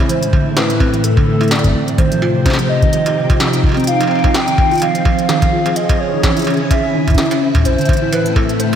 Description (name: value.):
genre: IDM.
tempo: 127 BPM.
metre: 4/4.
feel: swing 56% on 16ths.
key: unclear.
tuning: A4 = 440 Hz.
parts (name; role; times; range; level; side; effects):
soft string machine; sustained chords; 0.0-8.8 s; A2 to Ab5; -18 LUFS; left 2 dB; phaser, ensemble chorus, sidechain pumping.
harp-like synth pluck; arpeggios; 0.0-8.8 s; D3 to F4; -18 LUFS; right 3 dB; chorus, diffuse ambient delay.
warbly nostalgic lead; melody; 0.1-8.8 s; A4 to G5; -19 LUFS; equal; lush chorus, cassette tape, tape echo.
industrial drum kit; drums; 0.1-8.8 s; hi-hat, snare drum, struck metal; -21 LUFS; right 1 dB; none.
electronic kick drum; drums; 0.3-8.5 s; none; -15 LUFS; equal; overdrive.
room: moderate lush hall reverb, RT60 1.7 s.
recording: dreamy mix soaked in reverb.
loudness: -12 LUFS.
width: side -9 dB against mid.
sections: 0.0-8.8 A section.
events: none.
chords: 0.1 Am; 2.0 Cm; 3.9 Fm7; 5.8 Dbm; 7.7 Am.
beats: | 0.09 0.57 1.04 1.51 | 1.98 2.46 2.93 3.40 | 3.87 4.34 4.82 5.29 | 5.76 6.24 6.71 7.18 | 7.65 8.12 8.60.